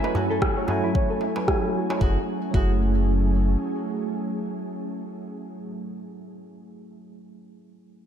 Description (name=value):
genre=organic downtempo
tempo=113 BPM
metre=4/4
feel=swing 56% on 16ths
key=F# minor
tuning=A4 = 440 Hz
part: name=tine electric piano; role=accompaniment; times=0.0-8.1 s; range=F#3 to G#5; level=-31 LUFS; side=right 2 dB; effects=fast stereo tremolo, sidechain pumping, low-pass filter, ping-pong delay
part: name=ethereal airy pad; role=sustained chords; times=0.0-5.1 s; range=F#3 to G#5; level=-30 LUFS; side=right 1 dB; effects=ensemble chorus, built-in reverb, sidechain pumping
part: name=nylon-string guitar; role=arpeggios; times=0.0-2.7 s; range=E4 to E5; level=-30 LUFS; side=equal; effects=low-pass filter, ping-pong delay
part: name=darbuka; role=percussion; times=0.0-2.0 s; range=none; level=-32 LUFS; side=right 1 dB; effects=none
part: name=electronic shaker and rim click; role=drums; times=0.2-2.0 s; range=none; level=-28 LUFS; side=equal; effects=low-pass filter on hats, low-pass filter on perc, low-pass filter on snare, gated reverb
part: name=electronic kick drum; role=drums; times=0.4-2.7 s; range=none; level=-25 LUFS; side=equal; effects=none
part: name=warm sub bass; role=bass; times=2.0-3.6 s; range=F#1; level=-22 LUFS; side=equal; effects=tube saturation
room=light reverb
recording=bright 1980s-style digital production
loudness=-22 LUFS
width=side -9 dB against mid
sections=0.0-2.0 A section; 2.0-6.3 B section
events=filter sweep on drum 0.0-2.0; filter sweep on nylon-string guitar 0.0-2.0; filter sweep on tine electric piano 0.0-2.0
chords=0.0 F#m9